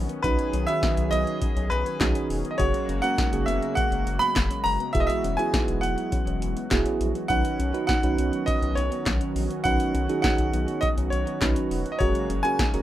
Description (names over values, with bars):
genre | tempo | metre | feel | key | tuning
synth-pop | 102 BPM | 4/4 | straight | unclear | A4 = 442 Hz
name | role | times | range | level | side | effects
brassy analog pad | sustained chords | 0.0-12.8 s | C#3 to G#4 | -32 LUFS | right 1 dB | chorus
round analog bass | bass | 0.0-12.8 s | E1 to B1 | -28 LUFS | left 1 dB | none
soft round pluck | arpeggios | 0.1-12.8 s | B3 to F#4 | -37 LUFS | left 4 dB | chorus, tape echo
electro analog drum machine | drums | 0.1-12.8 s | handclaps, hi-hat, kick drum, snare drum | -27 LUFS | left 1 dB | none
bright grand piano | melody | 0.2-12.8 s | B4 to B5 | -27 LUFS | right 1 dB | tape echo
soft electric-piano-like synth keys | accompaniment | 0.2-12.8 s | D#3 to B4 | -29 LUFS | right 4 dB | chorus
room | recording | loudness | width
little or no reverb | rough home demo mix | -22 LUFS | side -13 dB against mid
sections
0.0-12.8 A section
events
none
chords
0.0 Badd9; 2.6 F#add9; 4.9 Eadd9; 12.0 F#add9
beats
| 0.24 0.83 1.42 2.01 | 2.59 3.18 3.77 4.36 | 4.95 5.54 6.12 6.71 | 7.30 7.89 8.48 9.06 | 9.65 10.24 10.83 11.42 | 12.01 12.59